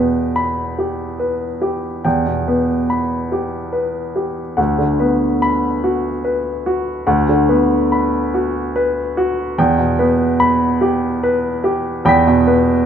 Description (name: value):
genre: neoclassical minimalist piano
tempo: 72 BPM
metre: 3/4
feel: rubato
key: unclear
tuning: A4 = 439 Hz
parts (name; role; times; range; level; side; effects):
- warm grand piano; solo; 0.0-12.9 s; D2 to B6; -15 LUFS; equal; none
room: moderate recital hall reverb, RT60 1.6 s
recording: minimal, uncompressed stereo recording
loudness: -15 LUFS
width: side -8 dB against mid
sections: 0.0-12.9 A section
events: none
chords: 0.0 Em; 4.6 Bm/D; 9.6 Em